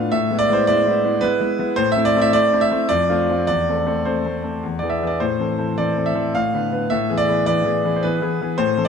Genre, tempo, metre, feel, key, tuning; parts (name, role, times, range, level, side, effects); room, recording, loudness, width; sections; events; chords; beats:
classical-period piano sonatina; 107 BPM; 3/4; straight; A minor; A4 = 442 Hz
warm concert grand piano; solo; 0.0-8.9 s; E2 to F5; -17 LUFS; equal
moderate recital hall reverb, RT60 1.7 s; close, detailed microphones; -17 LUFS; side -6 dB against mid
0.0-8.9 A section
0.1 E7/A; 1.8 Am; 2.9 F; 3.5 Am/E; 4.6 E; 5.2 Am; 6.3 Bm7b5/A; 6.9 E/A
| 0.11 0.67 1.22 | 1.78 2.34 2.90 | 3.48 4.06 4.64 | 5.21 5.78 6.34 | 6.91 7.47 8.02 | 8.58